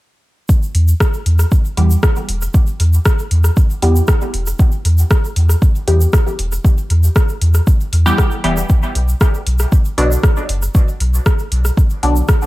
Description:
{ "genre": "dub techno", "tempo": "117 BPM", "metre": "4/4", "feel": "straight", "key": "E minor", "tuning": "A4 = 440 Hz", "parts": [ { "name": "electronic kick drum", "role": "drums", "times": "0.5-12.4 s", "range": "none", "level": "-12 LUFS", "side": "equal", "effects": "overdrive" }, { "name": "egg shaker", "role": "percussion", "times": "0.5-12.5 s", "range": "none", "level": "-29 LUFS", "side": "right 4 dB", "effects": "none" }, { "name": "soft dub sub bass", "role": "bass", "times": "0.7-12.2 s", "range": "E1 to E2", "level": "-13 LUFS", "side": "equal", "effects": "sidechain pumping" }, { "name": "deep house drum kit", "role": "drums", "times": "0.7-12.4 s", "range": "hi-hat, rim click", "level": "-22 LUFS", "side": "equal", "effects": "overdrive, dub echo" }, { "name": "filtered dub chord stab", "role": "stabs", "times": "1.8-12.2 s", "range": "B2 to G4", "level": "-20 LUFS", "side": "equal", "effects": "chorus, phaser, sidechain pumping, dub echo" } ], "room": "digital ambience", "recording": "echo-heavy mix", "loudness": "-12 LUFS", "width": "side -18 dB against mid", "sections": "0.5-12.5 A section", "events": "none", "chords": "0.5 Em; 8.7 Bm" }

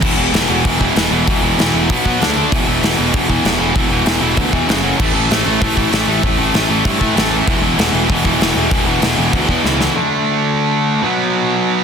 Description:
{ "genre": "punk rock", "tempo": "194 BPM", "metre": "4/4", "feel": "straight", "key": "unclear", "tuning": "A4 = 436 Hz", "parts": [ { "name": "distorted electric guitar", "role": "riff", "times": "0.0-11.8 s", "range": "E2 to D4", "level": "-19 LUFS", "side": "left 12 dB", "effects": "overdrive" }, { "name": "distorted electric guitar", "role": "riff", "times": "0.0-11.8 s", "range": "E2 to D4", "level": "-18 LUFS", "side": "right 12 dB", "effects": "overdrive" }, { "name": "scooped high-gain guitar", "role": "riff", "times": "0.0-9.9 s", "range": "E2 to D4", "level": "-20 LUFS", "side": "equal", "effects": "distortion" }, { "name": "fuzz picked electric bass", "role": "bass", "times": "0.0-9.9 s", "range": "E1 to B2", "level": "-21 LUFS", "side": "equal", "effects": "overdrive" }, { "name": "big rock drum kit", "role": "drums", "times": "0.0-9.9 s", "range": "crash cymbal, hi-hat, kick drum, snare drum", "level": "-18 LUFS", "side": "equal", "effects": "none" } ], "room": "light reverb, studio reverb", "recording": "dense, heavily limited modern master", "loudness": "-12 LUFS", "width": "side -6 dB against mid", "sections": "0.0-9.9 A section; 9.9-11.8 B section", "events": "drum fill 9.6-9.9; half time 9.9-11.8", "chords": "0.0 E5; 1.9 B5; 2.2 D5; 2.5 E5; 4.7 F#5; 5.0 A5; 7.5 E5; 9.9 D5; 11.0 B5" }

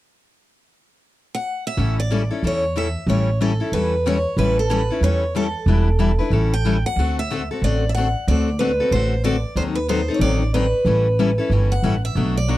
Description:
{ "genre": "acoustic string swing (jazz manouche)", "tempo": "185 BPM", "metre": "4/4", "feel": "swing 61% on 8ths", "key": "A mixolydian", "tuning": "A4 = 441 Hz", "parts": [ { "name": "picked steel-string acoustic guitar", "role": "melody", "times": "1.3-12.6 s", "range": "A4 to G5", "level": "-23 LUFS", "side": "right 1 dB", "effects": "none" }, { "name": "picked steel-string acoustic guitar", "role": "accompaniment", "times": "1.8-12.6 s", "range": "B2 to B4", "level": "-23 LUFS", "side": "left 5 dB", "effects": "none" }, { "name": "upright bass", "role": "bass", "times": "1.8-12.6 s", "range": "E1 to E2", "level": "-20 LUFS", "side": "right 1 dB", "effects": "none" } ], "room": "little or no reverb", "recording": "dry, close 1970s-style studio recording", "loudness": "-17 LUFS", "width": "side -15 dB against mid", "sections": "0.5-1.8 A section; 1.8-12.6 B section", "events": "none", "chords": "0.5 N.C.; 1.8 A7; 5.7 Em7; 6.3 A7; 7.0 D7; 9.6 D#dim7; 10.9 A7" }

